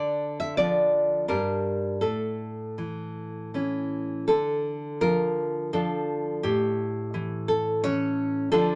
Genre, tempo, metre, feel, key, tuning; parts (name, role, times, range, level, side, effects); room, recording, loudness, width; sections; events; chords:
romantic piece for solo classical guitar; 78-88 BPM; 3/4; rubato; A4 = 440 Hz
nylon-string guitar; solo; 0.0-8.8 s; G2 to E5; -27 LUFS; equal
moderate studio reverb, RT60 0.5 s; -27 LUFS; mono
0.0-8.8 A section
0.0 Dm; 1.3 Gm; 2.0 A; 4.3 Dm; 6.5 A7